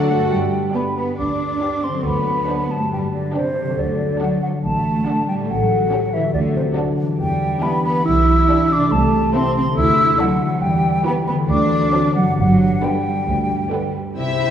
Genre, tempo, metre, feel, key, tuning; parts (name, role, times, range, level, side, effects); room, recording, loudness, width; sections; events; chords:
classical, dramatic, fast romantic movement for symphony orchestra; 139 BPM; 4/4; straight; G major; A4 = 439 Hz
rich symphonic violin section; melody; 0.0-14.5 s; G4 to E5; -31 LUFS; left 6 dB
mellow silver concert flute; second line; 0.0-14.0 s; C5 to E6; -22 LUFS; equal
rich symphonic violin section; second line; 0.0-14.5 s; B3 to F#5; -34 LUFS; left 2 dB
rich symphonic viola section; accompaniment; 0.0-14.5 s; D3 to F#4; -28 LUFS; right 2 dB
concert harp; arpeggios; 0.0-14.5 s; G2 to D5; -22 LUFS; left 3 dB
rich symphonic cello section; bass; 0.0-13.9 s; C3 to E4; -22 LUFS; right 2 dB
rich symphonic double bass section; bass; 0.0-14.5 s; G1 to G2; -24 LUFS; right 2 dB
wet scoring stage reverb, RT60 1.9 s; heard from further back in the room; -16 LUFS; side -9 dB against mid
0.3-14.2 A section
0.3 G; 2.1 D7; 2.9 G; 3.8 D; 5.5 A7; 6.3 D; 7.2 Em7; 8.9 Am/C; 9.8 D; 10.6 Em; 11.5 D7; 12.4 G